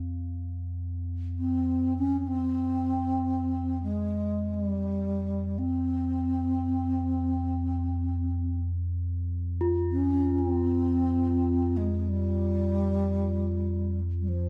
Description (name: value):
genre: world meditative, free-time meditation music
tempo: free time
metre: none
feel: none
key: F hirajoshi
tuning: A4 = 439 Hz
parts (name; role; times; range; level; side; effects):
- deep rumbling drone; drone; 0.0-14.5 s; F2; -32 LUFS; equal; built-in reverb
- bronze singing bowl; texture; 0.0-0.9, 9.6-14.5 s; C4 to F4; -37 LUFS; equal; none
- mellow hollow bass flute; melody; 1.4-14.5 s; F3 to Db4; -30 LUFS; equal; slapback echo, plate reverb
room: wet studio reverb, RT60 0.7 s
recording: none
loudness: -28 LUFS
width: mono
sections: 0.4-14.5 A section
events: none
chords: none